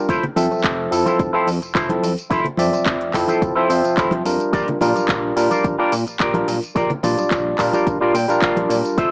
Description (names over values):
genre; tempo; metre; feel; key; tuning
nu-disco, nu disco; 108 BPM; 4/4; straight; unclear; A4 = 440 Hz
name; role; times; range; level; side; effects
barky tine electric piano; accompaniment; 0.0-9.0 s; F3 to E5; -22 LUFS; equal; cassette tape
electric guitar with an envelope filter; riff; 0.0-9.1 s; E4 to G5; -25 LUFS; equal; lush chorus, cassette tape
chorused synth bass; bass; 0.1-9.1 s; F1 to Bb2; -28 LUFS; equal; sidechain pumping
electronic kick drum; drums; 0.1-9.1 s; none; -25 LUFS; equal; cassette tape
house drum kit; drums; 0.1-9.1 s; handclaps, hi-hat, tambourine; -28 LUFS; equal; cassette tape
congas; percussion; 0.2-8.7 s; none; -29 LUFS; equal; none
room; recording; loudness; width
moderate booth ambience, RT60 0.2 s; home recording on cassette, small speaker sound; -19 LUFS; mono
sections
0.0-9.1 A section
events
clean electric guitar fill 7.9-9.0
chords
0.1 Fmaj7; 4.5 Bb6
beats
| 0.09 0.64 1.20 1.75 | 2.31 2.87 3.42 3.98 | 4.53 5.09 5.64 6.20 | 6.75 7.31 7.87 8.42 | 8.98